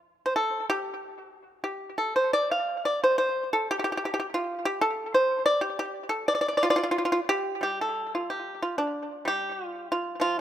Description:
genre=chinese traditional, Chinese solo plucked strings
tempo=86-96 BPM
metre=2/4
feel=rubato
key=unclear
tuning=A4 = 439 Hz
part: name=pipa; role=solo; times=0.0-10.4 s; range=F3 to F5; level=-25 LUFS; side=equal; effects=tape echo
room=light reverb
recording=close, detailed microphones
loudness=-25 LUFS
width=side -11 dB against mid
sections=0.0-7.6 A section; 7.6-10.4 B section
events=none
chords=none

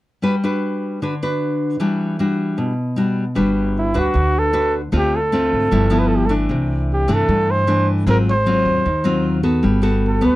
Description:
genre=bossa nova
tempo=153 BPM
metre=4/4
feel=straight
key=G major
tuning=A4 = 444 Hz
part: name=nylon-string guitar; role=accompaniment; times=0.2-10.4 s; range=G2 to B4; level=-18 LUFS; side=left 1 dB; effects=none
part: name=upright bass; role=bass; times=3.4-10.4 s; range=G1 to G2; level=-21 LUFS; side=right 1 dB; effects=none
part: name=warm flugelhorn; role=melody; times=3.8-10.4 s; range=E4 to C5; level=-19 LUFS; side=right 1 dB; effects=none
room=light reverb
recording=dry, close 1970s-style studio recording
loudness=-16 LUFS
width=side -17 dB against mid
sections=0.2-3.4 A section; 3.4-10.4 B section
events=none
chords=0.2 Gmaj7; 1.8 Em9; 3.4 Gmaj7; 4.9 Dm7; 5.7 G13; 6.5 C69; 8.1 Ab6; 9.6 Gmaj9

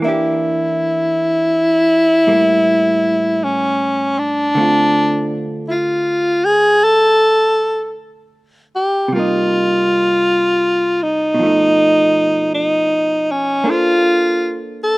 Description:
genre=jazz ballad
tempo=53 BPM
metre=4/4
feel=swing 66% on 8ths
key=unclear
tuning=A4 = 439 Hz
part: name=vintage hollow-body jazz guitar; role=accompaniment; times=0.0-15.0 s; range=A2 to C5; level=-22 LUFS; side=right 2 dB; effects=slapback echo
part: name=bright alto saxophone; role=melody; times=0.1-15.0 s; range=Db4 to A4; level=-13 LUFS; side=equal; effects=none
room=little or no reverb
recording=recorded outdoors, with no room sound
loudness=-13 LUFS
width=side -22 dB against mid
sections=0.0-15.0 A section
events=none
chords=0.0 Em7b5; 2.3 A5; 4.6 Dm7; 9.1 Cm7; 11.4 B7#11; 13.7 Bbmaj9

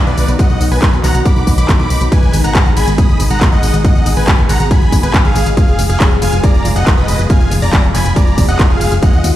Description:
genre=uplifting trance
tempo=139 BPM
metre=4/4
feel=straight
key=unclear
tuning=A4 = 439 Hz
part: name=lush unison pad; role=sustained chords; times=0.0-9.4 s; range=B2 to Ab4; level=-20 LUFS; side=left 1 dB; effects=chorus, phaser, sidechain pumping
part: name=big supersaw lead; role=melody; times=0.1-9.3 s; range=Ab4 to Eb6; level=-19 LUFS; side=equal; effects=cassette tape, sidechain pumping, digital delay
part: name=solid FM bass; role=bass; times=0.1-9.3 s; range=F1 to Eb2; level=-15 LUFS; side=equal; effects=sidechain pumping
part: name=techno drum kit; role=drums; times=0.1-9.3 s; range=handclaps, hi-hat, ride cymbal, tambourine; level=-20 LUFS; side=equal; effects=overdrive, sidechain pumping on hats, small room reverb, sidechain pumping on perc, sidechain pumping on cymbals
part: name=electronic kick drum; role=drums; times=0.4-9.1 s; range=none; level=-11 LUFS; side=equal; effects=overdrive, small room reverb
room=little or no reverb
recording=played on a big sound system in a bare room, large studio reverb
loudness=-9 LUFS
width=side -13 dB against mid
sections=0.0-9.4 A section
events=none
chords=0.0 B; 2.1 Abm; 5.6 Fdim

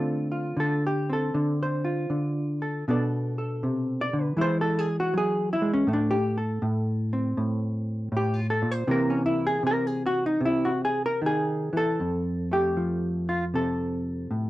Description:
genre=solo jazz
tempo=78 BPM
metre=4/4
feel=swing 66% on 8ths, rubato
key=F major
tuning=A4 = 440 Hz
part: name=hollow-body jazz guitar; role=solo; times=0.0-14.5 s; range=F2 to D5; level=-24 LUFS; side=equal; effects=none
room=light reverb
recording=dry, close 1970s-style studio recording, tape saturation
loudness=-24 LUFS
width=side -16 dB against mid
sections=0.0-12.0 A section; 12.0-14.5 B section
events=hollow-body jazz guitar solo 0.0-12.0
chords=0.0 Dm7; 2.9 Bm7; 4.4 E; 5.9 Am; 8.9 C7alt; 12.0 F

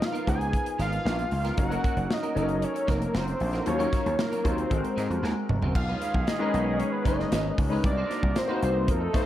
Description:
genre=polished 1980s jazz-funk pop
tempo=115 BPM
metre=4/4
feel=straight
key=unclear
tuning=A4 = 440 Hz
part: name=fat analog lead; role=melody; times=0.0-9.3 s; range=A4 to Ab5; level=-31 LUFS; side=equal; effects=chorus
part: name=clear concert grand piano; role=accompaniment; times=0.0-9.3 s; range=F3 to Db5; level=-31 LUFS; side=left 3 dB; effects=analog chorus
part: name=clean electric guitar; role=riff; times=0.0-9.3 s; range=Gb3 to C5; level=-37 LUFS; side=right 3 dB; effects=ensemble chorus
part: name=modern studio drum kit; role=drums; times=0.0-9.3 s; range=crash cymbal, hi-hat, kick drum, snare drum, toms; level=-29 LUFS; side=equal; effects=none
part: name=gritty slap bass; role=bass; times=0.3-9.1 s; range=F1 to Ab2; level=-29 LUFS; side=equal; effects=overdrive
part: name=clear horn section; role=second line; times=5.8-9.3 s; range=Eb3 to Bb4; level=-37 LUFS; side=right 2 dB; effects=tape echo
room=wet plate reverb, RT60 1.0 s, studio reverb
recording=dreamy mix soaked in reverb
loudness=-24 LUFS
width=side -12 dB against mid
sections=0.0-5.8 A section; 5.8-9.3 B section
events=drum fill 5.2-5.8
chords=0.0 Db13; 1.6 Gb6; 3.7 Ebm9; 4.7 Ab9; 5.8 Cb69; 7.8 Cm7b5

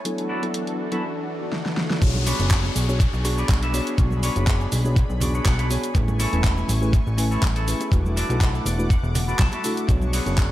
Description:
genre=nu-disco, nu disco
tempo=122 BPM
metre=4/4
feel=swing 53% on 16ths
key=B dorian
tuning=A4 = 439 Hz
part: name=mellow reed electric piano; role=accompaniment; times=0.0-10.5 s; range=F#3 to C#6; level=-29 LUFS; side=equal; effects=fast tremolo, sidechain pumping, analog delay
part: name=lush unison pad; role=sustained chords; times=0.0-10.5 s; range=E3 to D6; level=-33 LUFS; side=left 1 dB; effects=chorus, sidechain pumping
part: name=riser and downlifter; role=sound effects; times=0.7-6.0 s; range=none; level=-34 LUFS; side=left 2 dB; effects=none
part: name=pop drum kit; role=drums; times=0.1-10.5 s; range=cabasa, handclaps, hi-hat, ride cymbal, snare drum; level=-29 LUFS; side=equal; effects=overdrive, analog delay
part: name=clean electric guitar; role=riff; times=0.3-10.5 s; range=D4 to A5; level=-31 LUFS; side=equal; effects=wide subtle chorus, analog delay
part: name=fat analog bass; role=bass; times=2.0-10.5 s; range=E1 to B1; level=-23 LUFS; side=equal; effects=tube saturation
part: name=electronic kick drum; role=drums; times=2.0-10.5 s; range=none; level=-19 LUFS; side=equal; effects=none
part: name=congas and bongos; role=percussion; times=2.0-10.2 s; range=none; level=-33 LUFS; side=right 2 dB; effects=none
room=light reverb, digital ambience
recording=echo-heavy mix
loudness=-19 LUFS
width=side -14 dB against mid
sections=0.0-2.0 A section; 2.0-10.5 B section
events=filter sweep on clean electric guitar 0.0-2.0; riser 0.7-2.0; drum fill 1.5-2.0; drop 2.0-10.5; clean electric guitar fill 5.0-6.0, 8.4-9.9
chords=0.0 E9sus4; 2.0 Bm69; 6.0 Amaj7; 7.9 E9sus4; 9.9 Bm69

